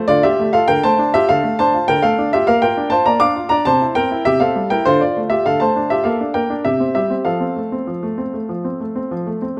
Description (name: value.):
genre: classical-period piano sonatina.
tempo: 100 BPM.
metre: 4/4.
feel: straight.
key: F major.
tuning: A4 = 441 Hz.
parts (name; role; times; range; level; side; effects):
clear grand piano; solo; 0.0-9.6 s; C3 to D6; -17 LUFS; equal; none.
room: moderate recital hall reverb, RT60 1.7 s.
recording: close, detailed microphones.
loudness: -17 LUFS.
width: mono.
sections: 0.0-9.6 A section.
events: none.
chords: 0.1 Dm; 2.5 Bb; 3.7 C; 4.9 Dm; 6.1 Gm/Bb; 6.7 C; 7.3 F.